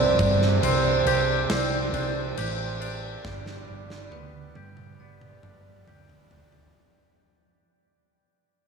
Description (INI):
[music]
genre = post-rock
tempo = 69 BPM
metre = 4/4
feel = straight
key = unclear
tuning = A4 = 441 Hz
[part]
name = hand-pumped harmonium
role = sustained chords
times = 0.0-6.7 s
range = C3 to D5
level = -31 LUFS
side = right 4 dB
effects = none
[part]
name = twangy electric guitar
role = arpeggios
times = 0.0-6.8 s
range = G2 to G4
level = -31 LUFS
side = left 5 dB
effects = wide subtle chorus, tape echo
[part]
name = vibraphone with hard mallets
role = arpeggios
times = 0.0-6.7 s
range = B4 to D5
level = -28 LUFS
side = right 5 dB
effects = tape echo
[part]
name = hollow-body short-scale fingered electric bass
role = bass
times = 0.0-6.7 s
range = G1 to G2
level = -28 LUFS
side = equal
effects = none
[part]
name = huge arena drum kit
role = drums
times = 0.2-6.7 s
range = crash cymbal, kick drum, snare drum, toms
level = -29 LUFS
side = left 1 dB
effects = none
[sound]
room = moderate huge ambient reverb, RT60 7.8 s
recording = dreamy mix soaked in reverb, studio ambience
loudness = -21 LUFS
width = side -5 dB against mid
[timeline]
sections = 0.0-6.7 A section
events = fade-out 0.0-6.7; drum fill 3.3-6.7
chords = 0.0 Csus2; 3.3 G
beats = 0.63 1.50 2.38 | 3.25 4.12 5.00 5.87